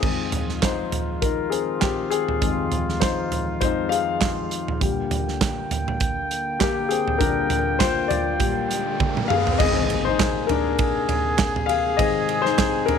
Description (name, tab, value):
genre	piano-driven pop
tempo	100 BPM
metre	4/4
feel	swing 56% on 16ths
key	unclear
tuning	A4 = 440 Hz
part	dark grand piano	accompaniment	0.0-13.0 s	F2 to F5	-23 LUFS	left 10 dB	none
part	warm brass ensemble	sustained chords	0.0-13.0 s	C3 to G5	-27 LUFS	right 1 dB	none
part	modern studio drum kit	drums	0.0-13.0 s	crash cymbal, handclaps, hi-hat, kick drum, ride cymbal, snare drum, toms	-24 LUFS	right 4 dB	none
part	riser and impact	sound effects	8.2-12.0 s	none	-30 LUFS	right 2 dB	none
room	light reverb, studio ambience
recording	1960s-style stereo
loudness	-20 LUFS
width	side -7 dB against mid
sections	0.0-9.6 A section; 9.6-13.0 B section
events	grand piano solo 0.0-9.6, 9.6-13.0; riser 8.2-9.6; drum fill 9.0-9.6; impact 9.6-12.0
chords	0.0 Fm7; 4.8 Bb6; 9.6 Abadd9